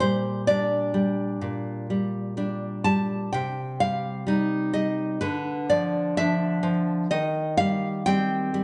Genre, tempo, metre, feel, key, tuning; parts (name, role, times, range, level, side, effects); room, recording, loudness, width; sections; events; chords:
romantic piece for solo classical guitar; 63 BPM; 4/4; rubato; G minor; A4 = 440 Hz
nylon-string guitar; solo; 0.0-8.6 s; Bb2 to A5; -25 LUFS; equal; slapback echo
moderate recital hall reverb, RT60 1.4 s; nothing above 10.6 kHz; -25 LUFS; mono
0.0-8.6 A section
0.0 Gm/Bb; 3.3 Cm; 5.2 Dm69; 7.1 Cm/Eb